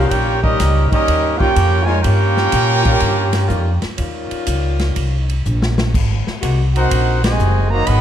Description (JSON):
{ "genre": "jazz, big band swing", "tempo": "124 BPM", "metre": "4/4", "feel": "swing 67% on 8ths", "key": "Eb major", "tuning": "A4 = 440 Hz", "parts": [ { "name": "clear trumpet section", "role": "melody", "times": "0.0-8.0 s", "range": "Db4 to Cb6", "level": "-19 LUFS", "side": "right 1 dB", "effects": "none" }, { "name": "clear trombone section", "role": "second line", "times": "0.0-8.0 s", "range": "C3 to G4", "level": "-20 LUFS", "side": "right 2 dB", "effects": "none" }, { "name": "clear saxophone section", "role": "sustained chords", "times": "0.0-6.6 s", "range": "C3 to G4", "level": "-25 LUFS", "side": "left 3 dB", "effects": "none" }, { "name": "upright bass", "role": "bass", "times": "0.0-8.0 s", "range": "Gb1 to Bb2", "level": "-17 LUFS", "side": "equal", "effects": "none" }, { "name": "swinging big-band drum kit", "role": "drums", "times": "0.1-8.0 s", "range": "crash cymbal, hi-hat, kick drum, ride cymbal, snare drum", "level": "-22 LUFS", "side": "equal", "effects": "none" } ], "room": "light reverb", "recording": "dark, warm production", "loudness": "-14 LUFS", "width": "side -10 dB against mid", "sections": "0.0-8.0 A section", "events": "drum fill 5.4-5.9; band accent 7.1", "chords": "0.0 Eb9; 5.9 Ab9" }